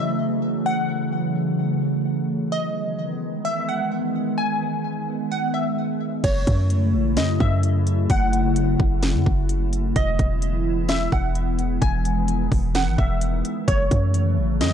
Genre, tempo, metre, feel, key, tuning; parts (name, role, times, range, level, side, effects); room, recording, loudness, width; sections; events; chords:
hip hop, atmospheric cloud-rap; 129 BPM; 4/4; half-time; F# dorian; A4 = 445 Hz
glassy wavetable pluck; melody; 0.0-14.7 s; C#5 to G#5; -28 LUFS; left 1 dB; chorus, low-pass filter, tape echo
glassy FM pad; sustained chords; 0.0-14.7 s; C#3 to E4; -24 LUFS; equal; ensemble chorus, built-in reverb, sidechain pumping
concert harp; arpeggios; 0.0-1.0 s; B3 to G#4; -45 LUFS; left 4 dB
warm 808-style bass; bass; 6.2-14.7 s; E1 to F#2; -22 LUFS; equal
trap drum kit; drums; 6.2-14.7 s; crash cymbal, hi-hat, kick drum, snare drum; -23 LUFS; equal; vintage 12-bit sampler grit
little or no reverb; dry, gritty hardware recording, transformer saturation; -20 LUFS; side -8 dB against mid
0.0-6.2 A section; 6.2-14.7 B section
0.0 F#m7; 2.5 Emaj7; 6.2 F#m7; 10.0 Emaj7; 13.7 F#m7